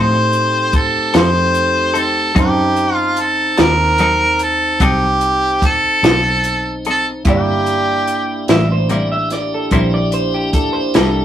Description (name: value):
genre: slow blues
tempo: 49 BPM (dotted quarters)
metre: 12/8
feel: straight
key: unclear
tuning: A4 = 440 Hz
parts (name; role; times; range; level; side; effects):
- warm harmonica; melody; 0.0-8.5 s; G4 to C5; -15 LUFS; right 1 dB; overdrive
- clean electric guitar; accompaniment; 0.0-11.2 s; C3 to A4; -21 LUFS; left 3 dB; tremolo
- warm grand piano; accompaniment; 0.0-11.2 s; Bb3 to A5; -25 LUFS; right 3 dB; none
- tonewheel organ; sustained chords; 0.0-11.2 s; A3 to G4; -23 LUFS; left 1 dB; slow rotary speaker
- vintage muted fingered electric bass; bass; 0.0-11.2 s; G1 to A2; -20 LUFS; equal; none
- compact cocktail drum kit; drums; 0.3-11.1 s; hi-hat, kick drum, snare drum; -16 LUFS; equal; none
- electric guitar through a small old amp; second line; 8.5-11.2 s; G4 to E5; -20 LUFS; right 2 dB; none
room: moderate small room reverb, RT60 0.5 s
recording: rough rehearsal-room recording, tube saturation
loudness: -13 LUFS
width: side -10 dB against mid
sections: 0.0-11.2 A section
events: none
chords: 0.0 F7; 2.4 F#dim7; 7.3 C7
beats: 1.14 | 2.36 3.59 4.81 6.04 | 7.26 8.49 9.72 10.95